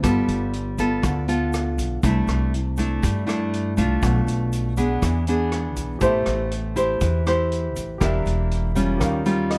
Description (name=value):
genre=bossa nova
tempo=120 BPM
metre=4/4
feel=straight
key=unclear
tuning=A4 = 438 Hz
part: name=nylon-string guitar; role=accompaniment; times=0.0-9.6 s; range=B2 to C5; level=-25 LUFS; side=equal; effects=none
part: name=upright bass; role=bass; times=0.0-9.6 s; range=E1 to G2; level=-27 LUFS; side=equal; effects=none
part: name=vintage drum kit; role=drums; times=0.0-9.6 s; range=hi-hat, kick drum, rim click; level=-31 LUFS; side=equal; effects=none
part: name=egg shaker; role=percussion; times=0.0-9.5 s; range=none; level=-48 LUFS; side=equal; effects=none
part: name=warm baby grand piano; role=accompaniment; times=6.0-9.6 s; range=G4 to F5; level=-33 LUFS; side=equal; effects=none
room=little or no reverb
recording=dark, warm production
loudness=-22 LUFS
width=mono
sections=0.0-9.6 A section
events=grand piano fill 9.3-9.6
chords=0.0 G9; 2.0 C69; 4.0 Bm7b5; 5.0 E7; 6.0 Am7; 8.0 Em7b5; 9.0 Eb9